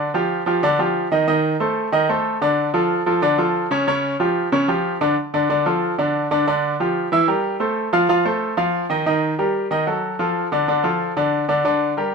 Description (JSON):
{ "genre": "latin", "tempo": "185 BPM", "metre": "4/4", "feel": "straight", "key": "D minor", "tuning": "A4 = 441 Hz", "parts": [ { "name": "bright baby grand piano", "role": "solo", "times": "0.0-12.1 s", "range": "C#3 to F5", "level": "-17 LUFS", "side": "equal", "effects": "none" } ], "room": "moderate studio reverb, RT60 0.9 s", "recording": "minimal, uncompressed stereo recording", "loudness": "-17 LUFS", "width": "side -4 dB against mid", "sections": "0.0-5.2 A section; 5.2-12.1 B section", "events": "none", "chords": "0.0 G5; 1.3 Cm69; 2.6 Dmmaj7; 3.9 C#; 5.2 Dm; 6.5 G5; 7.1 C7; 7.8 F; 9.1 Eb; 9.7 D#dim; 10.4 Dm" }